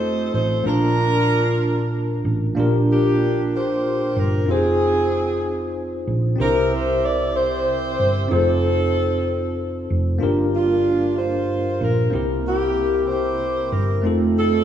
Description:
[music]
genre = slow gospel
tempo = 63 BPM (dotted quarters)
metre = 6/8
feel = straight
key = Bb major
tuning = A4 = 440 Hz
[part]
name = warm saxophone section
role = melody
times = 0.0-14.6 s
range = Bb3 to D5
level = -22 LUFS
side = right 1 dB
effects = none
[part]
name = bell-like tine electric piano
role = accompaniment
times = 0.0-14.6 s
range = G2 to A5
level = -22 LUFS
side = left 1 dB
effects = medium stereo tremolo
[part]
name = hollow-body short-scale fingered electric bass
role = bass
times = 0.0-14.6 s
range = F1 to C2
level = -24 LUFS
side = right 1 dB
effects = none
[sound]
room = moderate lush hall reverb, RT60 2.5 s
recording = rough home demo mix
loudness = -18 LUFS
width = side -10 dB against mid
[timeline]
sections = 0.0-2.6 A section; 2.6-14.6 A section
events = none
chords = 0.0 F7; 0.7 Bbmaj7; 2.6 Bb6; 4.5 Fm7; 6.4 C7; 8.3 F7; 10.2 Gm7; 12.1 C7; 14.0 F7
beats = | 0.66 1.61 | 2.57 3.52 | 4.48 5.44 | 6.39 7.35 | 8.31 9.27 | 10.22 11.18 | 12.13 13.09 | 14.05

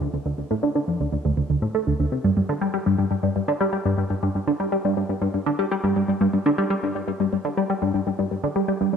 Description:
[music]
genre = ambient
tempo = 121 BPM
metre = 4/4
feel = straight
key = unclear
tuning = A4 = 440 Hz
[part]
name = tight sequenced synth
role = solo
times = 0.0-9.0 s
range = D2 to A3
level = -21 LUFS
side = equal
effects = chorus, phaser, ping-pong delay
[sound]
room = wet spring reverb, RT60 2.4 s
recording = echo-heavy mix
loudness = -21 LUFS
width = side -7 dB against mid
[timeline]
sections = 0.0-9.0 A section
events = none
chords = none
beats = | 0.26 0.76 1.25 1.75 | 2.24 2.74 3.24 3.73 | 4.23 4.72 5.22 5.71 | 6.21 6.71 7.20 7.70 | 8.19 8.69

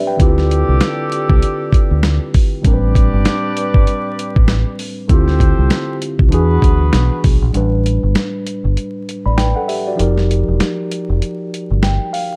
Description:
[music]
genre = hip hop, boom-bap hip-hop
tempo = 98 BPM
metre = 4/4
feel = swing 59% on 16ths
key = A minor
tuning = A4 = 439 Hz
[part]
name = mellow tine electric piano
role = accompaniment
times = 0.0-12.4 s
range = A2 to B5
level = -22 LUFS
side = equal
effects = high-pass filter, low-pass filter
[part]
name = mellow horn section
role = stabs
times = 0.2-7.2 s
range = B3 to D5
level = -25 LUFS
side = equal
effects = high-pass filter, low-pass filter, slapback echo
[part]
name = deep dub fingered electric bass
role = bass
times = 0.2-12.0 s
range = E1 to E2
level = -17 LUFS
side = equal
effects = none
[part]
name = dusty soul sampler-style drum kit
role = drums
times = 0.2-12.3 s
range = hi-hat, kick drum, snare drum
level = -17 LUFS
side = equal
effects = none
[part]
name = finger snaps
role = percussion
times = 0.8-7.1 s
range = none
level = barely audible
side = none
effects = none
[sound]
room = little or no reverb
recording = dark, warm production, vinyl crackle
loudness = -15 LUFS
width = mono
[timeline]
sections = 0.0-7.5 A section; 7.5-12.4 B section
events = break 7.5-12.4; tine electric piano fill 11.5-12.4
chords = 0.2 Dm11; 2.6 Am11; 5.1 Dm11; 6.3 E9; 7.5 A9sus4; 10.0 F9sus4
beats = | 0.20 0.81 1.42 2.03 | 2.65 3.26 3.87 4.48 | 5.09 5.71 6.32 6.93 | 7.54 8.16 8.77 9.38 | 9.99 10.61 11.22 11.83

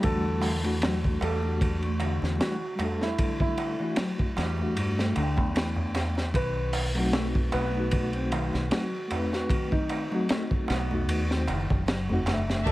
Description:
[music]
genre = trip hop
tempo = 76 BPM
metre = 4/4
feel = swing 55% on 16ths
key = E minor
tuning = A4 = 441 Hz
[part]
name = felt-muted upright piano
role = melody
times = 0.0-12.7 s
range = D#4 to B4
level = -34 LUFS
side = right 1 dB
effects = tape echo
[part]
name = mellow reed electric piano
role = accompaniment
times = 0.0-12.7 s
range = G3 to G5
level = -32 LUFS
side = left 1 dB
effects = tremolo, tape echo
[part]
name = mellow electric guitar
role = arpeggios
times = 0.0-12.7 s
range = D3 to C4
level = -35 LUFS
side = left 1 dB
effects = vintage 12-bit sampler grit, tape echo
[part]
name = deep dub fingered electric bass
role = bass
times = 0.0-12.7 s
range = F#1 to G2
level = -29 LUFS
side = equal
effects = tube saturation
[part]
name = crunchy breakbeat drum kit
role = drums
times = 0.0-12.7 s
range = hi-hat, kick drum, ride cymbal, snare drum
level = -30 LUFS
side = equal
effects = none
[part]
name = darbuka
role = percussion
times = 0.0-12.7 s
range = none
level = -36 LUFS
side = right 2 dB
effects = none
[part]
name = clear studio string section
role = sustained chords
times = 12.7 s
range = D5 to A5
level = -30 LUFS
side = right 1 dB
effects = none
[sound]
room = light reverb, small room ambience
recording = vinyl crackle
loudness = -25 LUFS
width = side -17 dB against mid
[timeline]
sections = 0.0-12.7 A section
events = none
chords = 0.0 Em11; 6.3 B7b9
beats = | 0.03 0.82 1.61 2.40 | 3.19 3.98 4.77 5.56 | 6.35 7.14 7.93 8.72 | 9.51 10.29 11.08 11.87 | 12.66

